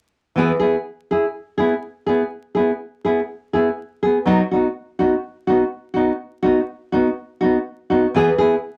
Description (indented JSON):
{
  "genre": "highlife",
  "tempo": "123 BPM",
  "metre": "4/4",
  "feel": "straight",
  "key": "E major",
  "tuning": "A4 = 440 Hz",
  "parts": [
    { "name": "nylon-string guitar", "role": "solo", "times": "0.4-8.5 s", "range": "E3 to G#4", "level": "-19 LUFS", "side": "equal", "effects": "none" }
  ],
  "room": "light reverb",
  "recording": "vinyl crackle",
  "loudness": "-20 LUFS",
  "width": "mono",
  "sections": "0.4-8.1 A section",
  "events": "none",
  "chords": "0.4 E; 4.3 B; 8.1 E",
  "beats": "| 0.35 0.84 1.33 1.82 | 2.30 2.79 3.28 3.77 | 4.25 4.74 5.23 5.71 | 6.20 6.69 7.18 7.66 | 8.15"
}